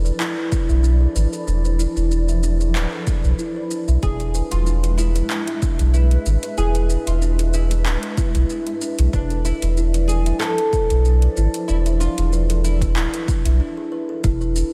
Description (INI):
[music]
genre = organic downtempo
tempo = 94 BPM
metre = 4/4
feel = swing 54% on 16ths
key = unclear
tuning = A4 = 440 Hz
[part]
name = granular cloud pad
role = sustained chords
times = 0.0-14.7 s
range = F3 to E5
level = -34 LUFS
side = equal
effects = built-in reverb, sidechain pumping
[part]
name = kalimba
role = arpeggios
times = 0.0-14.7 s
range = D4 to E5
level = -29 LUFS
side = equal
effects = tape echo, slapback echo
[part]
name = warm sub bass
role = bass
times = 0.0-14.6 s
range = D1 to B1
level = -20 LUFS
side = equal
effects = sidechain pumping
[part]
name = deep house drum kit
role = drums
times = 0.1-14.7 s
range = handclaps, hi-hat, shaker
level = -32 LUFS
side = equal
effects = overdrive, studio reverb, slapback echo
[part]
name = electronic kick drum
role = drums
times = 0.5-14.4 s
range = none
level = -25 LUFS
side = equal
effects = overdrive, studio reverb
[part]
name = oud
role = melody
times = 4.0-13.6 s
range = D4 to A4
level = -30 LUFS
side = equal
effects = delay, slapback echo
[sound]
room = light reverb, digital ambience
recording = none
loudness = -20 LUFS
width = mono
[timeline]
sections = 0.0-14.2 A section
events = break 13.6-14.2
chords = 0.0 Dmadd9/E; 4.0 E; 9.1 Dmadd9/E